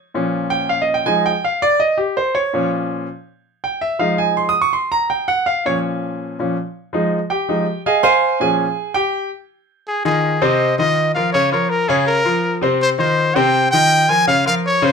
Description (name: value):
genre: latin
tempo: 164 BPM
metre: 4/4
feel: straight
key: F minor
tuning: A4 = 440 Hz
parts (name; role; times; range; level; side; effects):
- clear concert grand piano; accompaniment; 0.1-14.9 s; Bb2 to Eb6; -16 LUFS; equal; none
- clear trumpet; melody; 9.9-14.9 s; Ab4 to Ab5; -16 LUFS; equal; none
room: moderate studio reverb, RT60 0.6 s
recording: none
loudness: -15 LUFS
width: side -5 dB against mid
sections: 0.0-9.9 A section; 9.9-14.9 B section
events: grand piano solo 0.0-9.9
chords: 0.0 Bbm; 1.1 Fm7; 2.5 Bbm; 4.0 Fm7; 5.5 Bbm; 6.9 Fm7; 8.4 Bbm; 9.9 Fm7; 11.3 Bbm; 12.8 F5; 14.3 Bbm